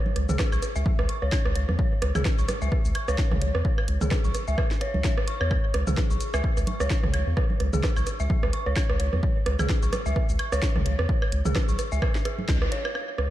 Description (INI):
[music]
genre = minimal techno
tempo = 129 BPM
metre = 4/4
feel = swing 57% on 16ths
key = C# minor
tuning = A4 = 440 Hz
[part]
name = organic electronic drum kit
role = percussion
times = 0.1-13.3 s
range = congas, rim click, toms, woodblock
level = -30 LUFS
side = right 3 dB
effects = studio ambience, digital delay
[part]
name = saturated sub bass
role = bass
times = 0.2-13.3 s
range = B1 to E2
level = -26 LUFS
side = equal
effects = sidechain pumping
[part]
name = garage drum kit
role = drums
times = 0.2-12.8 s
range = hi-hat, shaker, snare drum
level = -35 LUFS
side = equal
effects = overdrive, studio ambience
[part]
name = dark detuned synth bell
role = riff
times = 0.3-13.0 s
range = G#4 to C#6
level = -33 LUFS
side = left 1 dB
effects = chorus, sidechain pumping, low-pass filter, ping-pong delay
[part]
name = electronic kick drum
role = drums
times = 0.4-12.6 s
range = none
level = -25 LUFS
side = equal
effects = studio ambience
[sound]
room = little or no reverb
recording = dark, warm production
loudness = -22 LUFS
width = side -14 dB against mid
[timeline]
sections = 0.0-12.9 A section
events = band accent 12.5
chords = 0.0 C#5